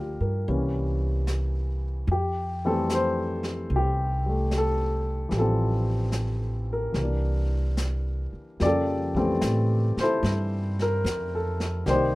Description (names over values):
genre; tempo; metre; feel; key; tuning
jazz ballad; 74 BPM; 4/4; swing 68% on 8ths; F major; A4 = 440 Hz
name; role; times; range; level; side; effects
warm upright piano; accompaniment; 0.0-12.2 s; Db3 to D5; -27 LUFS; left 1 dB; none
upright bass; bass; 0.0-12.2 s; A1 to A2; -26 LUFS; equal; none
vintage brush drum kit; drums; 0.5-12.2 s; brushed snare drum, hi-hat, kick drum, snare drum; -34 LUFS; equal; none
room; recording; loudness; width
light reverb; rough home demo mix; -24 LUFS; side -19 dB against mid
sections
0.0-8.6 A section; 8.6-12.2 B section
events
none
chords
0.5 C7b9; 2.1 Fmaj9; 6.9 C9; 8.6 Fmaj9